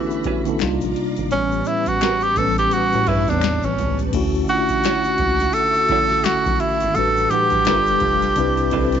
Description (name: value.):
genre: R&B, neo-soul.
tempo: 85 BPM.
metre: 4/4.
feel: swing 60% on 16ths.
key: D major.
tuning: A4 = 444 Hz.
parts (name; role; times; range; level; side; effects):
clear tenor saxophone; melody; 0.0-9.0 s; E3 to A4; -19 LUFS; right 1 dB; none.
mellow tine electric piano; accompaniment; 0.0-9.0 s; A2 to F#5; -22 LUFS; left 1 dB; medium stereo tremolo.
string machine, violins; sustained chords; 0.0-9.0 s; G3 to D6; -30 LUFS; equal; ensemble chorus.
egg shaker and finger snaps; percussion; 0.1-9.0 s; none; -37 LUFS; left 15 dB; none.
booming analog drum machine; drums; 0.2-9.0 s; crash cymbal, hi-hat, kick drum, snare drum; -27 LUFS; left 3 dB; none.
vintage hollow-body jazz guitar; second line; 0.3-8.9 s; C#4 to C#5; -27 LUFS; right 13 dB; none.
rubbery square bass; bass; 0.6-9.0 s; F1 to A2; -25 LUFS; equal; none.
room: light reverb.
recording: 1960s-style stereo with parts hard left and right, nothing above 7.8 kHz.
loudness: -16 LUFS.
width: side -8 dB against mid.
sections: 0.0-4.1 A section; 4.1-9.0 B section.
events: tenor saxophone solo 0.0-4.1.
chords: 0.0 Dmaj13; 0.6 Cm11; 1.3 A9; 4.1 Dmaj9; 7.0 A13sus4; 7.7 G7; 8.4 Cmaj9.